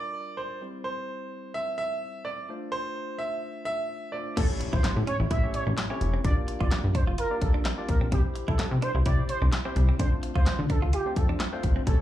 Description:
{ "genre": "dance-pop", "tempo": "128 BPM", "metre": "4/4", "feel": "straight", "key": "D minor", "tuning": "A4 = 440 Hz", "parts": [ { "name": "clear grand piano", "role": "melody", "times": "0.0-4.3 s", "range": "C5 to E5", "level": "-32 LUFS", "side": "right 2 dB", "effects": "slapback echo, digital delay" }, { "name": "barky tine electric piano", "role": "accompaniment", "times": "0.0-12.0 s", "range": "G3 to D5", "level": "-37 LUFS", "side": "left 3 dB", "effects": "sidechain pumping, slapback echo" }, { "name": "downlifter and impact", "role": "sound effects", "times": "0.1-0.6, 4.4-6.2 s", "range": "none", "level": "-36 LUFS", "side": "equal", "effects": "none" }, { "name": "expressive portamento lead", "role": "melody", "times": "4.4-12.0 s", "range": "G4 to E5", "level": "-33 LUFS", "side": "right 3 dB", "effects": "chorus, sidechain pumping, slapback echo, digital delay" }, { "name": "direct-recorded clean electric guitar", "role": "riff", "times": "4.4-12.0 s", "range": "A3 to F4", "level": "-37 LUFS", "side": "right 4 dB", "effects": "wide subtle chorus, slapback echo" }, { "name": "plucky analog bass", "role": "bass", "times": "4.4-11.9 s", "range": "F1 to D3", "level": "-26 LUFS", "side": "equal", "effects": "sidechain pumping" }, { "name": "house drum kit", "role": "drums", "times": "4.4-12.0 s", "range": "crash cymbal, handclaps, hi-hat, kick drum, snare drum", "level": "-26 LUFS", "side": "equal", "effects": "none" } ], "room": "digital ambience", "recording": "live gig heard through the venue's PA, club reverb", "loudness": "-25 LUFS", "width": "side -13 dB against mid", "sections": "0.0-4.4 A section; 4.4-12.0 B section", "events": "drop 4.4-12.0; impact 4.4-6.2", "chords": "0.0 Gm7; 0.6 C; 2.5 Dm7; 4.4 A7; 6.2 Gm7; 8.1 C; 10.0 Dm7" }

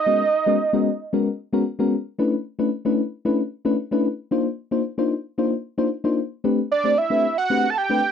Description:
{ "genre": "funk", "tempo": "113 BPM", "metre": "4/4", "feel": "straight", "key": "unclear", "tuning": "A4 = 440 Hz", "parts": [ { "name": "fat analog lead", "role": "melody", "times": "0.0-1.4, 6.7-8.1 s", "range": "D5 to A5", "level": "-19 LUFS", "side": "right 4 dB", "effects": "chorus, slapback echo" }, { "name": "mellow FM electric piano", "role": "accompaniment", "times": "0.1-8.0 s", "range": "G#3 to C5", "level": "-21 LUFS", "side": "left 3 dB", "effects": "chorus" } ], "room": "light reverb", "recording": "dry, close 1970s-style studio recording", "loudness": "-20 LUFS", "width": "side -8 dB against mid", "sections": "0.0-8.1 A section", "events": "none", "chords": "0.1 G#m11; 2.2 Bm11; 4.3 Cm11; 6.4 Am11" }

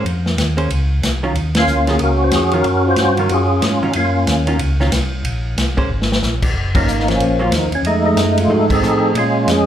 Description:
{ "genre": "soul jazz organ trio", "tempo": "185 BPM", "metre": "4/4", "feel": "swing 62% on 8ths", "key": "Bb minor", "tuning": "A4 = 439 Hz", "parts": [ { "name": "hollow-body jazz guitar", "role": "accompaniment", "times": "0.0-9.2 s", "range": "Eb3 to C5", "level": "-23 LUFS", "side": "right 3 dB", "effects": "slapback echo" }, { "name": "mellow tonewheel organ", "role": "bass", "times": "0.0-9.7 s", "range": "Gb1 to Bb2", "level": "-18 LUFS", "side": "equal", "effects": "slow rotary speaker" }, { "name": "vintage drum kit", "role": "drums", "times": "0.1-9.6 s", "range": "crash cymbal, hi-hat, kick drum, ride cymbal, snare drum", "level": "-21 LUFS", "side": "equal", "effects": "none" }, { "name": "percussive tonewheel organ", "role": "melody", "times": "1.6-4.6, 6.8-9.7 s", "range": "F3 to C5", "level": "-15 LUFS", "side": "equal", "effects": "slow rotary speaker, chorus vibrato, slapback echo" } ], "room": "light reverb, studio ambience", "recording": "live gig heard through the venue's PA, club reverb", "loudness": "-14 LUFS", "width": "side -10 dB against mid", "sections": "0.0-9.7 A section", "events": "band accent 1.5, 6.7, 8.7; drum fill 5.9-6.2", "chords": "0.0 Bbmadd9 (rootless); 1.3 Ebm9; 5.2 Bb7sus2; 6.5 Gbmaj7; 7.8 F7#9; 9.1 Bbm7" }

